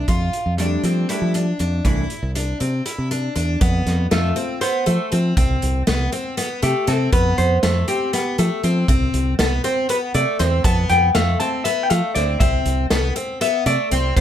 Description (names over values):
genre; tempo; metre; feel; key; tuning
progressive instrumental, band music in an uneven meter; 239 BPM (eighths); 7/8; straight; unclear; A4 = 440 Hz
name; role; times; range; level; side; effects
picked twelve-string acoustic guitar; arpeggios; 0.0-14.2 s; A3 to F4; -24 LUFS; left 2 dB; none
modern bright fingered electric bass; bass; 0.0-14.2 s; C2 to F3; -20 LUFS; equal; none
vintage drum kit; drums; 0.1-14.2 s; hi-hat, kick drum, snare drum; -23 LUFS; equal; none
vintage hollow-body jazz guitar; accompaniment; 0.6-14.2 s; E3 to A5; -21 LUFS; left 1 dB; none
room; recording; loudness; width
moderate studio reverb, RT60 0.6 s; none; -17 LUFS; side -10 dB against mid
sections
0.0-3.6 A section; 3.6-14.2 B section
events
hollow-body jazz guitar solo 3.6-14.2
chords
0.1 F6; 1.9 C; 3.6 F; 5.4 Am9/C; 7.1 F; 8.9 C5; 10.6 F6; 12.4 C6